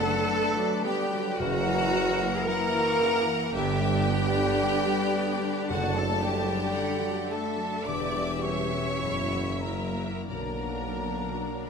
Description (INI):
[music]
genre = classical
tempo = 43-57 BPM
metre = 4/4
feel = rubato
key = B minor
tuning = A4 = 440 Hz
[part]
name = clear studio violin section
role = melody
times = 0.0-11.7 s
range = D5 to A#5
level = -37 LUFS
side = left 4 dB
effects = none
[part]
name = mellow clarinet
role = second line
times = 0.0-11.6 s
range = D4 to B4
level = -39 LUFS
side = equal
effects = none
[part]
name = mellow hollow concert flute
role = second line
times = 0.0-11.7 s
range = F#5 to D6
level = -35 LUFS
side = equal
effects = none
[part]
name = warm studio violin section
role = second line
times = 0.0-11.7 s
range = F#5 to D6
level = -37 LUFS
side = left 2 dB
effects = none
[part]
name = rich studio viola section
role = accompaniment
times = 0.0-11.7 s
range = C#3 to G4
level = -35 LUFS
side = equal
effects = none
[part]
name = warm bassoon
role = accompaniment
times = 0.0-11.7 s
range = D3 to F#3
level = -35 LUFS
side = right 3 dB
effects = none
[part]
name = mellow French horn section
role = sustained chords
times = 0.0-11.7 s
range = F#3 to D4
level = -34 LUFS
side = left 4 dB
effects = none
[part]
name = concert harp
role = arpeggios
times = 0.0-11.7 s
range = E2 to D6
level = -36 LUFS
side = left 12 dB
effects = none
[part]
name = clear studio cello section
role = bass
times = 0.0-11.7 s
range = F#4 to D5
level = -32 LUFS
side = right 3 dB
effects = none
[part]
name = rich studio double bass section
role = bass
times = 0.0-11.4 s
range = E1 to B1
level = -34 LUFS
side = right 4 dB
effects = none
[part]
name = warm tuba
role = bass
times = 0.0-11.5 s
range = E1 to B1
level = -36 LUFS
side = right 5 dB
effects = none
[part]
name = timpani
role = percussion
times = 1.4-7.3 s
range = F#2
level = -41 LUFS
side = left 1 dB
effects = none
[sound]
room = moderate concert hall reverb, RT60 1.8 s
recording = close, detailed microphones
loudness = -25 LUFS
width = side -6 dB against mid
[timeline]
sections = 0.0-11.7 A section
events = none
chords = 0.0 Bm; 1.4 F#7; 3.5 G; 5.7 D/F#; 7.9 Em7; 9.0 F#7; 10.3 Bm